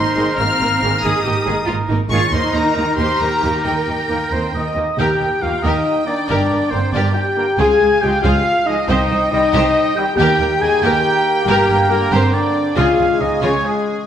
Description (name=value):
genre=cinematic, heroic adventure film score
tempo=92 BPM (dotted quarters)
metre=6/8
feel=straight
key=Eb major from 5.0 s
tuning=A4 = 440 Hz
part: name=warm symphonic violin section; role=melody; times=0.0-14.1 s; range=F5 to F6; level=-26 LUFS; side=left 2 dB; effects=none
part: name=bright clarinet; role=second line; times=0.0-4.7 s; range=Eb4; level=-28 LUFS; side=left 1 dB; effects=none
part: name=clear oboe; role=second line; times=0.0-14.1 s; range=Ab4 to Ab5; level=-23 LUFS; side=right 1 dB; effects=none
part: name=mellow hollow large flute ensemble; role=second line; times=0.0-14.1 s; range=Ab4 to Bb5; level=-26 LUFS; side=left 1 dB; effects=none
part: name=rich symphonic violin section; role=second line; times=0.0-13.6 s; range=Eb4 to Eb5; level=-28 LUFS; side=left 2 dB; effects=none
part: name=warm symphonic viola section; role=accompaniment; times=0.0-13.6 s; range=Eb3 to C5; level=-25 LUFS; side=right 1 dB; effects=none
part: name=dark trumpet section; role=stabs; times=0.0-14.1 s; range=G4 to Ab5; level=-23 LUFS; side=equal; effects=none
part: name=warm symphonic cello section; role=bass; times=0.0-13.5 s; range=C2 to Bb4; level=-23 LUFS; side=right 2 dB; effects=none
part: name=warm symphonic double bass section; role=bass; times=0.0-13.5 s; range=G1 to Eb2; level=-22 LUFS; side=right 2 dB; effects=none
part: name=warm trombone section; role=sustained chords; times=0.1-14.1 s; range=Db3 to Bb3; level=-26 LUFS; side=right 3 dB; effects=none
part: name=mellow French horn section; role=sustained chords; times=0.2-14.1 s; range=Ab3 to Ab4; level=-19 LUFS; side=left 3 dB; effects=none
room=wet scoring stage reverb, RT60 1.6 s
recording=none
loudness=-14 LUFS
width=side -9 dB against mid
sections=0.0-5.0 A section; 5.0-14.1 B section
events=none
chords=0.0 Abadd9; 2.3 Eb; 6.3 Gm; 7.6 Db; 8.9 Cm; 10.2 Eb; 11.5 Gm; 12.8 Db